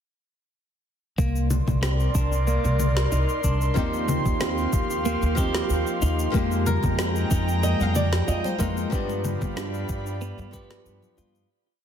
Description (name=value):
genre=sunset chillout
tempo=93 BPM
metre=4/4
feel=swing 53% on 16ths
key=C minor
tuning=A4 = 440 Hz
part: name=airy breathy pad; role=sustained chords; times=1.4-11.5 s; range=Ab3 to C6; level=-30 LUFS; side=equal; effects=chorus, shimmer reverb
part: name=clean electric guitar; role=arpeggios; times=1.2-11.5 s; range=Bb3 to B4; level=-32 LUFS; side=right 1 dB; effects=phaser, digital delay, shimmer reverb
part: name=upright bass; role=bass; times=1.2-11.4 s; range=C2 to G2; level=-25 LUFS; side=equal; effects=none
part: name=electronic kick drum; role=drums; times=1.2-10.7 s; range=none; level=-26 LUFS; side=equal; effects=none
part: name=electronic shaker, congas and snare drum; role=drums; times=1.2-11.5 s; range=none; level=-30 LUFS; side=left 2 dB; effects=none
part: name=flamenco guitar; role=accompaniment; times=3.7-11.5 s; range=F3 to G4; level=-30 LUFS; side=moving between left 5 dB and right 4 dB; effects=auto-pan, digital delay, shimmer reverb
part: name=flamenco guitar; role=melody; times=6.7-11.2 s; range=Bb4 to F5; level=-31 LUFS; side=right 1 dB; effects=vintage 12-bit sampler grit, tape echo, shimmer reverb
part: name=congas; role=percussion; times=6.7-11.5 s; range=none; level=-36 LUFS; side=left 4 dB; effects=none
room=light reverb, small room ambience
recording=dense, heavily limited modern master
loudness=-22 LUFS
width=side -9 dB against mid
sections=1.2-11.5 groove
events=fade-out 8.1-11.5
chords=1.2 C7sus2; 3.8 Eb69; 6.3 Fm11; 8.9 G7